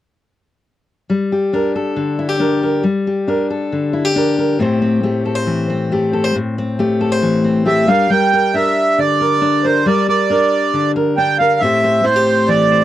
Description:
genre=folk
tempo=137 BPM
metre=4/4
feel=straight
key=unclear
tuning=A4 = 440 Hz
part: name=fingerpicked steel-string acoustic guitar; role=accompaniment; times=1.1-12.8 s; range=A2 to C5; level=-15 LUFS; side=left 2 dB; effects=none
part: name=accordion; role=melody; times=7.7-12.8 s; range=C5 to G5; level=-14 LUFS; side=right 3 dB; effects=none
room=moderate booth ambience, RT60 0.2 s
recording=dry, close 1970s-style studio recording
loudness=-13 LUFS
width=side -13 dB against mid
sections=1.1-8.1 A section; 8.1-12.8 B section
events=none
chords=1.1 Gm; 4.6 Am7; 7.9 Gm; 11.6 Am7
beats=| 1.10 1.54 1.97 2.41 | 2.85 3.29 3.72 4.16 | 4.60 5.04 5.47 5.91 | 6.35 6.79 7.23 7.66 | 8.10 8.54 8.98 9.42 | 9.86 10.29 10.73 11.17 | 11.61 12.05 12.49

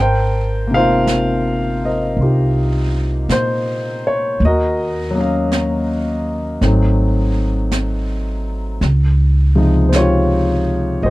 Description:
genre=jazz ballad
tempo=54 BPM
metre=4/4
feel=swing 67% on 8ths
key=Ab major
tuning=A4 = 440 Hz
part: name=warm concert grand piano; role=accompaniment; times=0.0-11.1 s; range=C3 to A5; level=-17 LUFS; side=left 1 dB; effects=none
part: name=upright bass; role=bass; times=0.0-11.1 s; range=Ab1 to Bb2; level=-17 LUFS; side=equal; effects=none
part: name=jazz brush drum kit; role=drums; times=1.1-11.1 s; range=brushed snare drum, hi-hat, snare drum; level=-28 LUFS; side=right 2 dB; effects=none
room=light reverb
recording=dry, close 1970s-style studio recording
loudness=-14 LUFS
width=side -18 dB against mid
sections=0.0-11.1 A section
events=none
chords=0.0 Ab69; 4.4 Ebm7; 6.6 Ab7b9; 8.8 Dbmaj9#11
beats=1.08 2.19 3.30 | 4.40 5.51 6.61 7.72 | 8.82 9.92 11.02

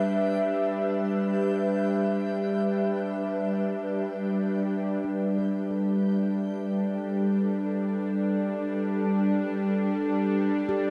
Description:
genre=ambient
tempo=free time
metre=none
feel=none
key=G major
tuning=A4 = 440 Hz
part: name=warbly tape-like pad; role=sustained chords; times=0.0-10.9 s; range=G3 to A5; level=-29 LUFS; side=equal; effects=chorus, built-in reverb, shimmer reverb
part: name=bowed-like drone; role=drone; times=0.0-10.9 s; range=G3 to D4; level=-32 LUFS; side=equal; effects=built-in reverb
part: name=backwards swelling texture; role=texture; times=0.0-5.1 s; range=G5 to G6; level=-52 LUFS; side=equal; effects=built-in reverb, shimmer reverb
part: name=handpan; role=arpeggios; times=5.0-10.9 s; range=D4 to A4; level=-40 LUFS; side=equal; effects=none
room=wet cathedral reverb, RT60 5.4 s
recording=cassette tape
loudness=-27 LUFS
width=mono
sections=0.0-5.0 A section; 5.0-10.9 B section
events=none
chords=0.0 Gadd9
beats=free time

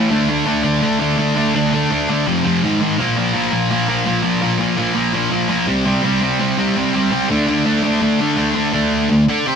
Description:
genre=rock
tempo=167 BPM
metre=4/4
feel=straight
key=unclear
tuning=A4 = 442 Hz
part: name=thick fuzz guitar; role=solo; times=0.0-9.6 s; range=F2 to D5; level=-14 LUFS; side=equal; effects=distortion
room=moderate studio reverb, RT60 0.8 s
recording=band playing live in one room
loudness=-15 LUFS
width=side -6 dB against mid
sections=0.0-8.7 A section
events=none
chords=0.1 D5; 2.3 F5; 2.6 G#5; 3.0 Bb5; 5.7 C5; 7.3 D5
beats=| 0.10 0.46 0.82 1.18 | 1.54 1.90 2.26 2.62 | 2.98 3.34 3.70 4.06 | 4.42 4.78 5.13 5.50 | 5.86 6.21 6.58 6.93 | 7.29 7.66 8.02 8.38 | 8.74 9.10 9.46

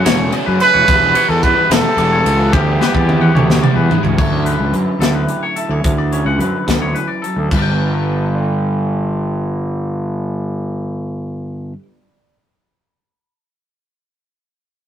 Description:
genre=math rock and midwest emo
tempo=72 BPM (dotted quarters)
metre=6/8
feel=straight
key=G lydian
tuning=A4 = 443 Hz
part: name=twangy electric guitar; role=arpeggios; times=0.0-11.8 s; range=G4 to G5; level=-23 LUFS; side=left 6 dB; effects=none
part: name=crunchy overdriven guitar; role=riff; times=0.0-4.2 s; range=C#3 to E4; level=-21 LUFS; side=equal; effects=none
part: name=fuzz fingered electric bass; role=bass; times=0.1-11.7 s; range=E1 to F#2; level=-18 LUFS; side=equal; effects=overdrive
part: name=crisp fusion drum kit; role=drums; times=0.1-7.6 s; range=crash cymbal, hi-hat, kick drum, ride cymbal, snare drum, toms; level=-17 LUFS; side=equal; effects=none
part: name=clear trumpet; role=melody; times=0.6-3.9 s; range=G4 to B4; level=-14 LUFS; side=right 2 dB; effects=none
part: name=electric guitar through a small old amp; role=accompaniment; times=4.2-12.4 s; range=G2 to G5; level=-23 LUFS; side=right 2 dB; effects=none
room=light reverb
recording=rough rehearsal-room recording, tube saturation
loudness=-13 LUFS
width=side -9 dB against mid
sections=0.0-4.2 A section; 4.2-7.5 B section; 7.5-10.9 C section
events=drum fill 2.5-4.2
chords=0.0 F#m7; 0.9 Em7; 4.2 Dmaj9; 7.5 Gadd9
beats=0.05 | 0.87 1.70 | 2.52 3.35 | 4.18 5.01 | 5.84 6.67 | 7.51 8.34 | 9.18 10.02

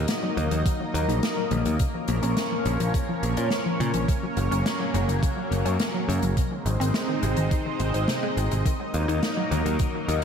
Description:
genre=synthwave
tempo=105 BPM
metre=4/4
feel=straight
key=Eb dorian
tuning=A4 = 439 Hz
part: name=lush unison pad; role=sustained chords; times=0.0-10.2 s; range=F3 to Eb5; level=-27 LUFS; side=left 1 dB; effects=chorus, phaser, sidechain pumping
part: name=wide unison pluck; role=arpeggios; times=0.0-10.2 s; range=C3 to C5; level=-31 LUFS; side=left 1 dB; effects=wide subtle chorus, ping-pong delay
part: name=modern bright picked electric bass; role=bass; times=0.0-10.2 s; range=Gb1 to Bb2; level=-25 LUFS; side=equal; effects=none
part: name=swinging big-band drum kit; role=drums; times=0.1-10.2 s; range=hi-hat, snare drum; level=-32 LUFS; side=left 1 dB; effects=none
part: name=electronic kick drum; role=drums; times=0.7-9.9 s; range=none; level=-25 LUFS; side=right 1 dB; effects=overdrive
room=wet lush hall reverb, RT60 2.0 s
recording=dreamy mix soaked in reverb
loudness=-22 LUFS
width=side -7 dB against mid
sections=0.0-10.2 A section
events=none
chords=0.0 Ebm; 1.8 Bbm; 4.1 Gb; 6.4 Ab; 8.7 Ebm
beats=0.09 0.66 1.23 | 1.80 2.37 2.94 3.51 | 4.08 4.66 5.23 5.80 | 6.37 6.94 7.51 8.09 | 8.66 9.23 9.80

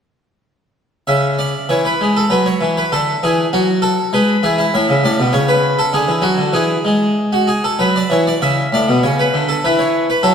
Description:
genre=classical, baroque-style suite movement for harpsichord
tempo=98 BPM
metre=3/4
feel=rubato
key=A major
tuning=A4 = 441 Hz
part: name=harpsichord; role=solo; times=1.1-10.3 s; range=A2 to E5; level=-13 LUFS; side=equal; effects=none
room=wet scoring stage reverb, RT60 2.0 s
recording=none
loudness=-13 LUFS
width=side -7 dB against mid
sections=1.1-10.3 A section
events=none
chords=1.1 C#m7; 2.9 D; 4.1 E/G#; 4.7 A; 5.9 D; 6.5 E; 8.4 A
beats=| 1.07 1.69 2.31 | 2.92 3.52 4.13 | 4.73 5.33 5.93 | 6.54 7.17 7.79 | 8.42 9.04 9.64 | 10.24

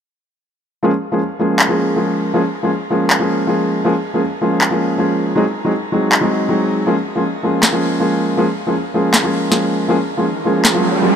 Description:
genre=future bass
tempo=159 BPM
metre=4/4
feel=swing 54% on 16ths, half-time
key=Db major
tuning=A4 = 440 Hz
part: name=felt-muted upright piano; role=accompaniment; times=0.8-11.2 s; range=F3 to Ab4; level=-15 LUFS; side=equal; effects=digital delay
part: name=electronic handclaps and snare drum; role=drums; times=1.6-10.7 s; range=none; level=-19 LUFS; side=equal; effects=none
part: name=riser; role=sound effects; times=10.3-11.2 s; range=none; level=-18 LUFS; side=right 4 dB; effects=none
room=light reverb, studio ambience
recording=none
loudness=-14 LUFS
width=side -8 dB against mid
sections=0.8-11.2 A section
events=riser 10.3-11.2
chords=0.8 Db6; 5.4 Ab7; 6.9 Db6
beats=| 0.84 1.22 1.59 1.97 | 2.35 2.72 3.10 3.48 | 3.86 4.23 4.61 4.99 | 5.37 5.74 6.12 6.50 | 6.88 7.25 7.63 8.01 | 8.38 8.76 9.14 9.52 | 9.89 10.27 10.65 11.03

